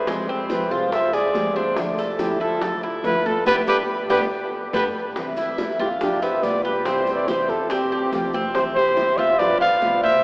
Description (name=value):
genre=latin, Cuban son and guajira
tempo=142 BPM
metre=4/4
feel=straight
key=C major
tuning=A4 = 440 Hz
part: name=breathy trumpet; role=melody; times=0.0-10.2 s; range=G4 to F5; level=-21 LUFS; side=equal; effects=none
part: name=breathy mellow concert flute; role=second line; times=0.0-10.2 s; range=C4 to D5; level=-28 LUFS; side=equal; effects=none
part: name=nylon-string guitar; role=accompaniment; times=0.0-10.2 s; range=C3 to G4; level=-29 LUFS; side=equal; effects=none
part: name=Cuban tres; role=arpeggios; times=0.0-10.2 s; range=Ab3 to A4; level=-26 LUFS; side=equal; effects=none
part: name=upright bass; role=bass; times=0.0-10.2 s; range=G1 to F2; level=-41 LUFS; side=equal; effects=none
part: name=bongos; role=percussion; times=0.1-10.2 s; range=none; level=-32 LUFS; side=left 1 dB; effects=none
part: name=congas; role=percussion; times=0.1-10.2 s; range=none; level=-35 LUFS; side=equal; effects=none
part: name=maracas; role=percussion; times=0.1-10.2 s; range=none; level=-44 LUFS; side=left 1 dB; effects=none
room=wet cathedral reverb, RT60 5.3 s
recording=recorded in a church or concert hall, AM radio sound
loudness=-19 LUFS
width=side -25 dB against mid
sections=0.0-5.2 A section; 5.2-10.2 B section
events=band accent 3.5-5.2; drum fill 4.5-5.2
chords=0.1 Fmadd9; 1.8 Dmadd9; 3.5 Gadd9; 5.2 C; 6.0 G7; 6.9 C; 7.7 Fsus2; 8.6 C; 9.4 G7